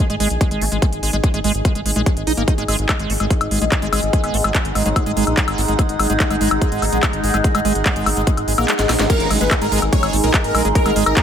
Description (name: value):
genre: psychedelic trance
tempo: 145 BPM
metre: 4/4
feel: straight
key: unclear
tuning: A4 = 440 Hz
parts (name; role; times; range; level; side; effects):
- liquid acid bass; riff; 0.0-11.2 s; G#3 to D#4; -23 LUFS; moving between left 1 dB and right 6 dB; chorus, auto-pan, sidechain pumping, digital delay
- granular cloud pad; texture; 0.0-11.2 s; D#4 to G#5; -25 LUFS; left 1 dB; built-in reverb, sidechain pumping
- round analog bass; bass; 0.1-11.1 s; G#1 to A#1; -22 LUFS; equal; none
- techno drum kit; drums; 0.1-11.2 s; crash cymbal, handclaps, hi-hat, snare drum, woodblock; -21 LUFS; left 2 dB; none
- electronic kick drum; drums; 0.4-11.2 s; none; -19 LUFS; equal; none
- overtone-sweeping drone; sustained chords; 3.3-11.2 s; G#3 to D#4; -24 LUFS; equal; chorus, built-in reverb, phaser, sidechain pumping
- resonant blip pluck; second line; 4.2-5.0, 10.9-11.0 s; F#3 to B3; -35 LUFS; right 1 dB; none
- zap; sound effects; 9.0-9.1 s; none; -27 LUFS; equal; none
- dense compressed supersaw; melody; 9.1-11.2 s; A#4 to C#5; -22 LUFS; equal; phaser, sidechain pumping, tape echo
room: light reverb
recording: none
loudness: -15 LUFS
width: side -9 dB against mid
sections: 0.0-9.1 A section; 9.1-11.2 B section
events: kick drops out 8.7-9.1; drum fill 8.8-9.1; drop 9.1-11.2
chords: 0.0 G#5